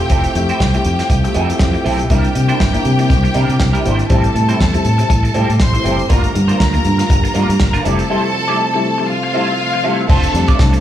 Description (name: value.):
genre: disco.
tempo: 120 BPM.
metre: 4/4.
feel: swing 56% on 16ths.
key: unclear.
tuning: A4 = 441 Hz.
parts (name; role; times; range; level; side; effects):
clear studio string section; second line; 0.0-10.8 s; F4 to C6; -20 LUFS; left 1 dB; slapback echo.
electric guitar at the edge of break-up; accompaniment; 0.0-10.8 s; G3 to D5; -23 LUFS; right 6 dB; wah, spring reverb, slapback echo.
tonewheel organ; sustained chords; 0.0-10.8 s; C3 to F4; -23 LUFS; right 2 dB; overdrive, slow rotary speaker.
dark grand piano; accompaniment; 0.1-10.8 s; G2 to G4; -22 LUFS; left 6 dB; slapback echo.
fingered electric bass; bass; 0.1-10.8 s; F1 to C3; -16 LUFS; equal; none.
warm soul drum kit; drums; 0.1-10.8 s; crash cymbal, hi-hat, kick drum, snare drum; -17 LUFS; equal; none.
room: light reverb.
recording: live gig heard through the venue's PA, club reverb.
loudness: -12 LUFS.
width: side -11 dB against mid.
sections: 0.0-2.1 A section; 2.1-10.1 B section.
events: break 8.1-10.1.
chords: 0.0 Fmaj7; 2.1 C9; 4.1 Am7; 6.1 Gm7; 7.8 Fmaj7; 10.1 F6.